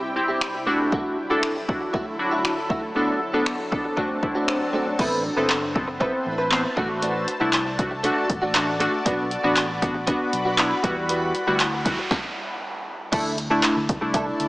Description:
dance-pop; 118 BPM; 4/4; straight; A4 = 440 Hz
shimmering ambient pad; sustained chords; 0.0-14.5 s; C3 to B5; -29 LUFS; left 1 dB; chorus, built-in reverb, sidechain pumping
direct-recorded clean electric guitar; riff; 0.0-14.4 s; G3 to B4; -28 LUFS; right 1 dB; ensemble chorus
glassy digital keys; accompaniment; 0.2-14.5 s; G3 to C5; -24 LUFS; equal; chorus, sidechain pumping
punchy analog drum machine; drums; 0.4-14.5 s; crash cymbal, finger snaps, handclaps, hi-hat, kick drum, snare drum; -25 LUFS; equal
swell, noise sweep and impact; sound effects; 3.3-5.0, 11.4-14.5 s; -33 LUFS; right 1 dB
fingered electric bass; bass; 5.0-14.5 s; F#1 to E2; -33 LUFS; equal; sidechain pumping
moderate lush hall reverb, RT60 2.4 s; small speaker sound; -21 LUFS; side -20 dB against mid
0.0-5.0 A section; 5.0-13.1 B section; 13.1-14.5 C section
swell 3.3-5.0; noise sweep 11.4-13.1; stop 12.1-13.1; impact 13.1-14.5
0.0 C; 0.7 Dadd9; 3.0 Bm7; 4.0 D; 5.0 Amadd9; 6.8 D/A; 9.1 Bm; 10.8 Emadd9; 13.1 Dsus2

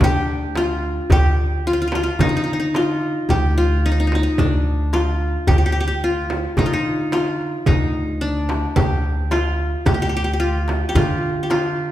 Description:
Arabic maqam ensemble; 110 BPM; 4/4; straight; D maqam kurd; A4 = 438 Hz
qanun; melody; 0.0-11.9 s; D4 to G4; -21 LUFS; left 1 dB
upright bass; bass; 0.0-11.9 s; D2 to D3; -21 LUFS; equal
darbuka; percussion; 0.0-11.8 s; -24 LUFS; left 1 dB
frame drum; percussion; 0.0-11.6 s; -25 LUFS; right 2 dB
wet recital hall reverb, RT60 1.6 s; recorded in a church or concert hall; -17 LUFS; side -13 dB against mid
0.0-11.9 A section

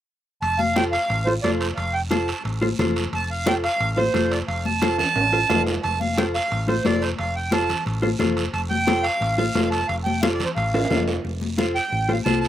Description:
latin, cumbia; 178 BPM; 4/4; straight; F major; A4 = 436 Hz
accordion; melody; 0.4-12.5 s; C5 to A5; -23 LUFS; right 2 dB; slapback echo
hollow-body short-scale fingered electric bass; bass; 0.4-12.5 s; F1 to C2; -27 LUFS; equal
congas; percussion; 0.4-12.4 s; -26 LUFS; left 5 dB
guiro; percussion; 0.4-12.5 s; -34 LUFS; right 5 dB
timbales; percussion; 0.4-11.2 s; -32 LUFS; right 4 dB; slapback echo
mellow electric guitar; accompaniment; 0.8-12.5 s; F4 to C5; -26 LUFS; equal; slapback echo
little or no reverb; recorded outdoors, with no room sound; -20 LUFS; side -11 dB against mid
0.4-11.2 A section; 11.2-12.5 B section
drum fill 5.0-5.8, 10.7-11.2
0.4 F

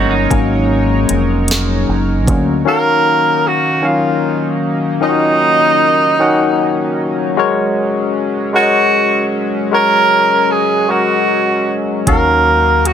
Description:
slow six-eight R&B; 51 BPM (dotted quarters); 6/8; straight; Eb minor; A4 = 441 Hz
electric guitar at the edge of break-up; second line; 0.0-1.2 s; Eb4 to Gb4; -21 LUFS; right 6 dB
barky tine electric piano; accompaniment; 0.0-12.9 s; Eb3 to Gb5; -16 LUFS; left 4 dB; auto-pan
chorused pulse-width pad; sustained chords; 0.0-12.9 s; Eb3 to Db5; -22 LUFS; right 2 dB
deep dub fingered electric bass; bass; 0.0-2.6, 12.1-12.9 s; F1 to Eb2; -17 LUFS; right 1 dB
smooth R&B drum kit; drums; 0.3-2.5, 12.1-12.9 s; hi-hat, kick drum, snare drum; -17 LUFS; right 1 dB
warm tenor saxophone; melody; 2.7-12.9 s; Eb4 to Bb4; -13 LUFS; right 2 dB
light reverb, digital ambience; -11 LUFS; side -8 dB against mid
0.0-2.7 A section; 2.7-12.9 B section
tine electric piano solo 0.0-2.7
0.0 Ab9sus4; 2.7 Ebm9; 7.4 Ab9sus4; 12.1 Ebm9

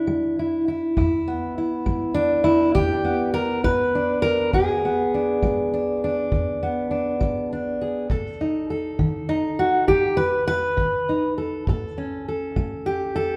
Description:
acoustic country blues, solo or duo; 67 BPM (dotted quarters); 12/8; straight; E mixolydian; A4 = 440 Hz
fingerpicked steel-string acoustic guitar; melody; 0.0-13.4 s; E2 to B4; -23 LUFS; equal
kick drum; drums; 1.0-12.7 s; -30 LUFS; equal
moderate recital hall reverb, RT60 1.5 s; recorded in a church or concert hall; -23 LUFS; mono
0.0-13.4 A section
0.0 E7; 8.1 B7; 11.7 A7

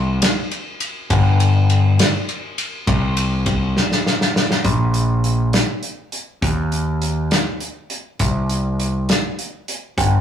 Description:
indie rock; 68 BPM (dotted quarters); 6/8; straight; A4 = 440 Hz
growling picked electric bass; bass; 0.0-10.2 s; G1 to Eb2; -17 LUFS; left 1 dB; overdrive
loose indie drum kit; drums; 0.2-10.1 s; hi-hat, kick drum, ride cymbal, snare drum; -20 LUFS; equal
light reverb; rough rehearsal-room recording, tube saturation, small room reverb; -16 LUFS; side -9 dB against mid
0.0-4.7 A section; 4.7-10.2 B section
drum fill 3.8-4.7

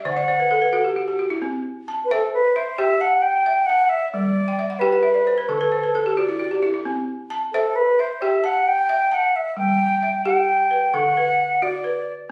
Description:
west african traditional, West African string and xylophone music; 88 BPM (dotted quarters); 12/8; straight; C lydian; A4 = 438 Hz
balafon; arpeggios; 0.0-12.3 s; D3 to A5; -25 LUFS; equal
mellow concert flute; melody; 0.1-12.1 s; A4 to G5; -22 LUFS; equal
light reverb; recorded on a phone in the room, studio reverb, compression, lossy compression artefacts; -20 LUFS; mono
0.0-1.4 A section; 1.4-12.3 A section
balafon fill 0.0-1.4, 4.5-6.9
0.1 D; 1.4 C; 4.1 G; 5.5 D; 6.9 C; 9.6 G; 10.9 D

